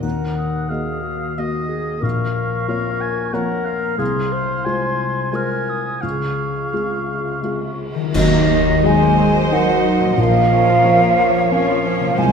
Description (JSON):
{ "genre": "cinematic, emotional film score for orchestra", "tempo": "84-93 BPM", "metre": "3/4", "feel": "rubato", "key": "Eb dorian", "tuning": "A4 = 440 Hz", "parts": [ { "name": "clear clarinet", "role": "second line", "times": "0.0-7.8 s", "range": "Gb4 to C5", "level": "-27 LUFS", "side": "left 2 dB", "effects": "none" }, { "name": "mellow hollow silver concert flute", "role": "second line", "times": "0.0-12.3 s", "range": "Eb5 to F6", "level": "-21 LUFS", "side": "right 2 dB", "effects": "none" }, { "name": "warm oboe", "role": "second line", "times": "0.0-7.8 s", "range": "Eb5 to Ab5", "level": "-27 LUFS", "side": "right 1 dB", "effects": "none" }, { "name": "felt-muted upright piano", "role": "accompaniment", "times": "0.0-12.3 s", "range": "Bb1 to Eb5", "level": "-22 LUFS", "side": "left 1 dB", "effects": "none" }, { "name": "concert harp", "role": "arpeggios", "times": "0.0-12.3 s", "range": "Bb2 to Eb5", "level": "-25 LUFS", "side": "left 6 dB", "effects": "none" }, { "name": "triangle, cymbal swell, clash cymbals and concert bass drum", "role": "percussion", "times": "0.0-9.5 s", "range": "none", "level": "-27 LUFS", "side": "right 1 dB", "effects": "none" }, { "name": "muted symphonic violin section", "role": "melody", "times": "8.1-12.3 s", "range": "Db5 to F5", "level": "-28 LUFS", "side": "left 3 dB", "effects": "none" }, { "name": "muted studio viola section", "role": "accompaniment", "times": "8.1-12.3 s", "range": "F3 to Gb4", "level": "-25 LUFS", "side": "right 2 dB", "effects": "none" }, { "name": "dark French horn section", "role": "sustained chords", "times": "8.1-12.3 s", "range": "Eb3 to Ab3", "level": "-21 LUFS", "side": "left 2 dB", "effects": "none" }, { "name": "muted symphonic cello section", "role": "bass", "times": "8.1-12.3 s", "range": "Eb3 to Ab3", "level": "-24 LUFS", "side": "right 5 dB", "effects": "none" }, { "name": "muted symphonic double bass section", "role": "bass", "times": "8.1-12.3 s", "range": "Bb1 to Eb2", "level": "-25 LUFS", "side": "right 4 dB", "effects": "none" }, { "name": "muted symphonic violin section", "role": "second line", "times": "8.8-12.3 s", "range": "Bb4 to Db5", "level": "-24 LUFS", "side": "left 3 dB", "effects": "none" } ], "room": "wet scoring stage reverb, RT60 1.6 s", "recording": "minimal, uncompressed stereo recording", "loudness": "-16 LUFS", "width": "side -6 dB against mid", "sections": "0.0-8.1 A section; 8.1-12.3 B section", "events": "band accent 8.1-8.8", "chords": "0.0 Ebm; 2.0 Bbm; 4.0 Fm/C; 6.0 Db; 8.1 Ebm; 10.2 Bbm", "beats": "| 0.04 0.71 1.38 | 2.04 2.69 3.34 | 4.00 4.66 5.33 | 6.03 6.74 7.44 | 8.14 8.84 9.51 | 10.18 10.84 11.51 | 12.17" }